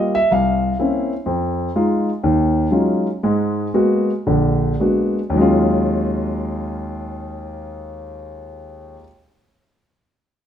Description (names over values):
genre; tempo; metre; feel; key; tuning
jazz; 106-125 BPM; 4/4; swing 67% on 8ths; Eb minor; A4 = 440 Hz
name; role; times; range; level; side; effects
warm concert grand piano; solo; 0.0-9.1 s; Bb1 to F5; -17 LUFS; equal; none
room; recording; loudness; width
wet stone room reverb, RT60 1.1 s; band playing live in one room; -16 LUFS; side -9 dB against mid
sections
0.0-1.3 A section; 1.3-5.3 B section; 5.3-9.9 C section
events
slowing down 1.3-5.3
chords
0.3 C7b9; 1.3 Fm7; 2.2 Ebm11; 3.2 Abm9; 4.2 Bb7b9b13; 5.3 Ebm11